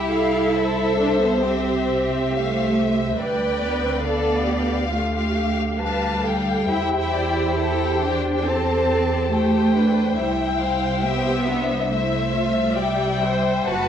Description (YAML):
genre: classical, slow romantic movement for string orchestra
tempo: 69 BPM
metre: 4/4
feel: rubato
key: C major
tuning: A4 = 440 Hz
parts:
  - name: dark studio violin section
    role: melody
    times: 0.0-13.9 s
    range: D5 to A5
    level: -27 LUFS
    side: left 4 dB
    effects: none
  - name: rich studio violin section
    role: second line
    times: 0.0-13.9 s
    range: G4 to G5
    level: -26 LUFS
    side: left 4 dB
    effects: none
  - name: warm studio viola section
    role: accompaniment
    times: 0.0-13.9 s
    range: D4 to C5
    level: -26 LUFS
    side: right 2 dB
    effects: none
  - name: rich studio cello section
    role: bass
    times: 0.0-13.9 s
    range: G3 to F#4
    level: -24 LUFS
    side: right 2 dB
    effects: none
  - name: warm studio double bass section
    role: bass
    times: 0.0-13.9 s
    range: F#1 to E2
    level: -27 LUFS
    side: right 2 dB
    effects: none
room: moderate scoring stage reverb, RT60 1.6 s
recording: worn, warbling old tape, cassette tape, warbly pitch drift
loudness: -19 LUFS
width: side -9 dB against mid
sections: 0.0-13.9 A section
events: none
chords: 0.0 C; 3.2 G7/D; 6.7 C/E; 10.2 C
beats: 0.55 1.43 2.32 | 3.18 4.04 4.89 5.76 | 6.69 7.58 8.47 9.32 | 10.17 11.04 11.91 12.78 | 13.68